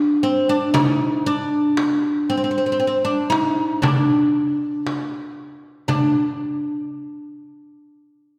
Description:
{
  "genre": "Arabic maqam ensemble",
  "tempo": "116 BPM (eighths)",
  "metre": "10/8",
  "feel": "straight",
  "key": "unclear",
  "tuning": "A4 = 440 Hz",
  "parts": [
    { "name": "oud", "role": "melody", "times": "0.0-6.4 s", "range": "C4 to Eb4+25c", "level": "-21 LUFS", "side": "equal", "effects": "none" },
    { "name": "frame drum", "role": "percussion", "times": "0.7-6.4 s", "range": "none", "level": "-27 LUFS", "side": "equal", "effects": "none" }
  ],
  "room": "wet concert hall reverb, RT60 1.9 s",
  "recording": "recorded in a church or concert hall",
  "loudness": "-20 LUFS",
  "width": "mono",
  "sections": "0.0-5.9 A section; 5.9-8.4 B section",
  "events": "none",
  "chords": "none",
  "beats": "0.23 | 0.74 1.26 1.77 2.29 2.80 3.32 3.83 4.35 4.86 5.38 | 5.89"
}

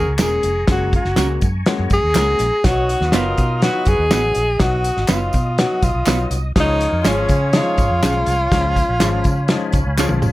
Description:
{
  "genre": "uptempo 1960s-style soul",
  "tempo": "122 BPM",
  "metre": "4/4",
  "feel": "straight",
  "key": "F# major",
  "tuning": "A4 = 442 Hz",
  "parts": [
    { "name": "breathy tenor saxophone", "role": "melody", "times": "0.0-10.0 s", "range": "C#4 to G#4", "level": "-20 LUFS", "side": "equal", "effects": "none" },
    { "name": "warm horn section", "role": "second line", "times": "0.0-8.0 s", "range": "F#3 to C#5", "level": "-25 LUFS", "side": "right 1 dB", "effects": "none" },
    { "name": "tonewheel organ", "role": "sustained chords", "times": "0.0-10.3 s", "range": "C#5 to D#6", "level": "-31 LUFS", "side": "left 1 dB", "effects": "slow rotary speaker, chorus vibrato" },
    { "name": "vintage muted fingered electric bass", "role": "bass", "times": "0.0-10.3 s", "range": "E1 to C#3", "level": "-21 LUFS", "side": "equal", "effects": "none" },
    { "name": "clear upright piano", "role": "accompaniment", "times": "0.2-10.3 s", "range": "E#3 to G#4", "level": "-26 LUFS", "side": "left 5 dB", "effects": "none" },
    { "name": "semi-hollow electric guitar", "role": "stabs", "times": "0.2-10.1 s", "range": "G#3 to C#5", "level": "-22 LUFS", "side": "right 7 dB", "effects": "none" },
    { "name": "warm soul drum kit", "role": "drums", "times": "0.2-10.3 s", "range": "hi-hat, kick drum, snare drum, toms", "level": "-19 LUFS", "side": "equal", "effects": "none" },
    { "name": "handclaps and tambourine", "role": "percussion", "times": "0.2-10.3 s", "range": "none", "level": "-30 LUFS", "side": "left 1 dB", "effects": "none" }
  ],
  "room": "little or no reverb",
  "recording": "none",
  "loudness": "-15 LUFS",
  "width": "side -17 dB against mid",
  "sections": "0.0-10.3 A section",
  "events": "drum fill 10.0-10.3",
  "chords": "0.0 F#add9; 2.6 B; 6.6 C#",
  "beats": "0.19 | 0.68 1.17 1.66 2.15 | 2.64 3.13 3.62 4.11 | 4.60 5.09 5.58 6.07 | 6.56 7.05 7.54 8.03 | 8.52 9.01 9.50 9.99"
}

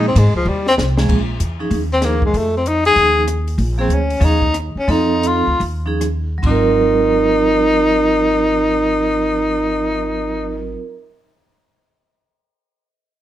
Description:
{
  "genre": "jazz, small-group swing and bop",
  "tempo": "135-193 BPM",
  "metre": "4/4",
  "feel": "swing 64% on 8ths",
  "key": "Ab mixolydian",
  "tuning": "A4 = 440 Hz",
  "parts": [
    { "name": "breathy tenor saxophone", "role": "melody", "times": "0.0-10.8 s", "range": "F3 to G#4", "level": "-16 LUFS", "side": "left 2 dB", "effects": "plate reverb" },
    { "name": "vibraphone with medium hard mallets", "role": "accompaniment", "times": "0.0-10.9 s", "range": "F3 to Bb4", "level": "-19 LUFS", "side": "right 4 dB", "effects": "none" },
    { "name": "upright bass", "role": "bass", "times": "0.0-10.7 s", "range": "Ab1 to Bb2", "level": "-20 LUFS", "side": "equal", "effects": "none" },
    { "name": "compact cocktail drum kit", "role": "drums", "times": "0.2-9.9 s", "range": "crash cymbal, cymbal swell, hi-hat, kick drum, ride cymbal, rim click, snare drum", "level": "-24 LUFS", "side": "equal", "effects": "none" }
  ],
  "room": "moderate studio reverb, RT60 0.8 s",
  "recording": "none",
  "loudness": "-14 LUFS",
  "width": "side -12 dB against mid",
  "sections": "0.0-1.1 A section; 1.1-6.4 B section; 6.4-10.0 C section",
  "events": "drum fill 0.5-1.1; slowing down 3.6-6.4",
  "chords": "0.5 Ebsus2; 1.1 Bbm7; 1.7 Eb9sus4; 2.3 F7alt; 3.0 Eb9sus4; 3.6 Bbm7; 4.2 Eb9sus4; 4.9 F7; 5.6 Eb9sus4; 6.4 Ab13",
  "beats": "0.16 0.47 0.78 | 1.09 1.40 1.71 2.02 | 2.34 2.65 2.96 3.27 | 3.58 3.89 4.21 4.54 | 4.88 5.23 5.60 6.00 | 6.43 6.87 7.32 7.76 | 8.21 8.65 9.10 9.54"
}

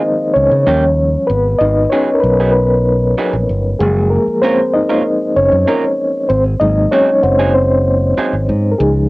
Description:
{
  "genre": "soul",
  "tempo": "96 BPM",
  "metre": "4/4",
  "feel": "straight",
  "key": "unclear",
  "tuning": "A4 = 436 Hz",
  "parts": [
    { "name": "reed electric piano", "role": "accompaniment", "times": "0.0-9.1 s", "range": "Eb3 to Eb5", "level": "-13 LUFS", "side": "left 1 dB", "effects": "fast tremolo, cassette tape" },
    { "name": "celesta", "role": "texture", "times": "0.0-9.1 s", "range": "Bb4 to Gb5", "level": "-28 LUFS", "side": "right 1 dB", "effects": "none" },
    { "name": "fingered electric bass", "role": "bass", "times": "0.4-9.1 s", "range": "Gb1 to Db3", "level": "-16 LUFS", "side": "equal", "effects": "none" },
    { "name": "electric guitar through a small old amp", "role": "riff", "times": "0.7-8.3 s", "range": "Eb3 to Bb4", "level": "-18 LUFS", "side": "right 3 dB", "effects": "cassette tape" }
  ],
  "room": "moderate booth ambience, RT60 0.2 s",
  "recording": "home recording on cassette",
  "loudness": "-11 LUFS",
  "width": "side -22 dB against mid",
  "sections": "0.0-9.1 A section",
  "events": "reed electric piano solo 0.0-9.1",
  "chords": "0.0 Dbmaj7; 0.7 Eb7; 1.3 Abm7; 3.8 Gbmaj7; 6.3 Ab7",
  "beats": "0.04 0.67 | 1.30 1.92 2.55 3.17 | 3.80 4.43 5.05 5.68 | 6.30 6.93 7.55 8.18 | 8.80"
}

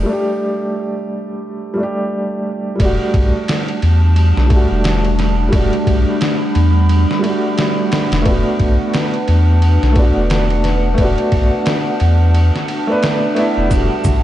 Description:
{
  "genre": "trip hop",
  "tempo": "88 BPM",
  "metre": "4/4",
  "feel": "swing 59% on 16ths",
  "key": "E minor",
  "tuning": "A4 = 443 Hz",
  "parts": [
    { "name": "dark upright piano", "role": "accompaniment", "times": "0.0-14.2 s", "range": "G3 to B4", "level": "-19 LUFS", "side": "right 1 dB", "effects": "tremolo, tape echo" },
    { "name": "warm sub bass", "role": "bass", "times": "0.0-14.2 s", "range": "E1 to E2", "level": "-13 LUFS", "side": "equal", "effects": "tube saturation" },
    { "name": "warbly tape-like pad", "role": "sustained chords", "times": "3.6-14.2 s", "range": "G3 to B5", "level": "-21 LUFS", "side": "right 1 dB", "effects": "chorus, built-in reverb" },
    { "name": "trip hop sampler-style drum kit", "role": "drums", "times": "2.8-14.2 s", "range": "kick drum, ride cymbal, snare drum", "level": "-19 LUFS", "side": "equal", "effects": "none" },
    { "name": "maracas and congas", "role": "percussion", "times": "13.7-14.2 s", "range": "none", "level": "-23 LUFS", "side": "equal", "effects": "none" }
  ],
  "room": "light reverb, digital ambience",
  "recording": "nothing above 10.7 kHz",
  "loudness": "-13 LUFS",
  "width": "side -13 dB against mid",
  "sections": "0.0-2.8 A section; 2.8-14.2 B section",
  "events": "break 0.1-2.8",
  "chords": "0.0 Dsus4; 2.8 Em11; 8.3 Bm7/E; 13.7 Em11",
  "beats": "| 0.07 0.75 1.44 2.12 | 2.80 3.48 4.16 4.84 | 5.53 6.21 6.89 7.57 | 8.25 8.94 9.62 10.30 | 10.98 11.66 12.35 13.03 | 13.71"
}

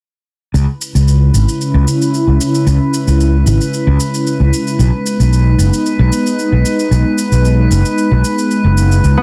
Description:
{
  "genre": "organic downtempo",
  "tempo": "113 BPM",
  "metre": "4/4",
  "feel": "straight",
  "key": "C# minor",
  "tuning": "A4 = 441 Hz",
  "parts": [
    { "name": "airy breathy pad", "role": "sustained chords", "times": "0.5-9.2 s", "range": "C#3 to E4", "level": "-18 LUFS", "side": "equal", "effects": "chorus" },
    { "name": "fretless electric bass", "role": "bass", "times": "0.5-9.1 s", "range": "F#1 to C#2", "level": "-13 LUFS", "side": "equal", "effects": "tube saturation" },
    { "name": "shaker", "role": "drums", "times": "0.5-9.2 s", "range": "none", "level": "-27 LUFS", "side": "equal", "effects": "none" },
    { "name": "drifting glass-harmonics texture", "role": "texture", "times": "1.0-9.2 s", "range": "B4", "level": "-26 LUFS", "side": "equal", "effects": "chorus, built-in reverb" },
    { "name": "concert harp", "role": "arpeggios", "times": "9.2 s", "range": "B3", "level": "-15 LUFS", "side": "equal", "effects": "none" }
  ],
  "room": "light reverb, digital ambience",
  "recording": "dense, heavily limited modern master",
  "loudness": "-13 LUFS",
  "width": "mono",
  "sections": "0.5-9.2 A section",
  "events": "filter sweep on analog synth pad 0.5-9.2",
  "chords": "0.5 C#m7; 4.8 B6",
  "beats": "| 0.54 1.07 1.60 2.13 | 2.66 3.19 3.73 4.26 | 4.79 5.32 5.85 6.38 | 6.91 7.44 7.97 8.51 | 9.04"
}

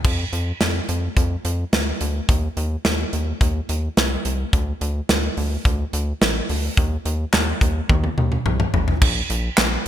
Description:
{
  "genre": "synth-pop",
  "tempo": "107 BPM",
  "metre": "4/4",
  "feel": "straight",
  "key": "unclear",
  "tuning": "A4 = 439 Hz",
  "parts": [
    { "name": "rubbery square bass", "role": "bass", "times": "0.0-9.9 s", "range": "A1 to F2", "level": "-23 LUFS", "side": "equal", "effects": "none" },
    { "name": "modern studio drum kit", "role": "drums", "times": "0.0-9.9 s", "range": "crash cymbal, handclaps, hi-hat, kick drum, snare drum, toms", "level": "-20 LUFS", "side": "equal", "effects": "gated reverb" }
  ],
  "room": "light reverb",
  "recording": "bright 1980s-style digital production",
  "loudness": "-19 LUFS",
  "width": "side -11 dB against mid",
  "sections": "0.0-9.0 A section",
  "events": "drum fill 7.9-9.0",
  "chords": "none",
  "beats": "| 0.05 0.61 1.17 1.73 | 2.29 2.85 3.41 3.97 | 4.53 5.09 5.65 6.21 | 6.78 7.33 7.90 8.46 | 9.02 9.58"
}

